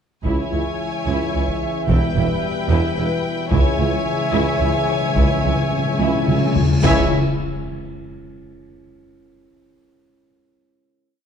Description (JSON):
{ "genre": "cinematic, epic orchestral film score", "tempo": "73 BPM (dotted quarters)", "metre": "6/8", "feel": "straight", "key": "C# minor", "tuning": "A4 = 440 Hz", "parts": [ { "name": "warm studio viola section", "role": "accompaniment", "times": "0.2-7.1 s", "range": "E4", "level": "-29 LUFS", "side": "equal", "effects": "none" }, { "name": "rich studio double bass section", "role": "bass", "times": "0.2-7.1 s", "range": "E1 to C#2", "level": "-25 LUFS", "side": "right 3 dB", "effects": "none" }, { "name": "rich symphonic violin section", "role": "melody", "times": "0.3-7.2 s", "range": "G5 to G#5", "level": "-29 LUFS", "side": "left 3 dB", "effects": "none" }, { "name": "warm symphonic violin section", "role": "second line", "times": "0.3-7.1 s", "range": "B4 to C#5", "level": "-28 LUFS", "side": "left 5 dB", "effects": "none" }, { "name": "dark French horn section", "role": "sustained chords", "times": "0.3-7.1 s", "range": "G3 to E4", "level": "-28 LUFS", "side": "left 6 dB", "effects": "none" }, { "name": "mellow trombone section", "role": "sustained chords", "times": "0.3-7.1 s", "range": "B2 to E3", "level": "-29 LUFS", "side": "equal", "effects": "none" }, { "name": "mellow trumpet", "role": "stabs", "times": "0.3-7.1 s", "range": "E5", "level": "-27 LUFS", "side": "right 2 dB", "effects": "none" }, { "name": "clear tuba", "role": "bass", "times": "0.3-7.1 s", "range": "E1 to C#2", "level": "-28 LUFS", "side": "right 4 dB", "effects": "none" }, { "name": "rich studio cello section", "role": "bass", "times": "0.3-7.1 s", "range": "C#2 to E2", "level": "-25 LUFS", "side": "right 3 dB", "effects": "none" }, { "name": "taiko ensemble", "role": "drums", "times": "0.3-7.9 s", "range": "none", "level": "-22 LUFS", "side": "equal", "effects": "none" }, { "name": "timpani", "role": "percussion", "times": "3.5-7.1 s", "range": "C#3", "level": "-23 LUFS", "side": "left 2 dB", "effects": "none" }, { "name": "cymbal swell and impact", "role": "sound effects", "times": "6.3-8.5 s", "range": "none", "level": "-30 LUFS", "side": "left 1 dB", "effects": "none" } ], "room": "wet scoring stage reverb, RT60 1.7 s", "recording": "dark, warm production", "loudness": "-17 LUFS", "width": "side -7 dB against mid", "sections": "0.3-6.8 theme; 6.8-8.5 final chord", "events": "timpani fill 3.5-6.8; drum fill 6.0-6.8; cymbal swell 6.3-6.8; impact 6.8-8.5", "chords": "0.3 C#m; 1.9 Em; 3.5 C#m", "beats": "| 0.26 1.08 | 1.89 2.70 | 3.52 4.34 | 5.17 6.00 | 6.84 7.67" }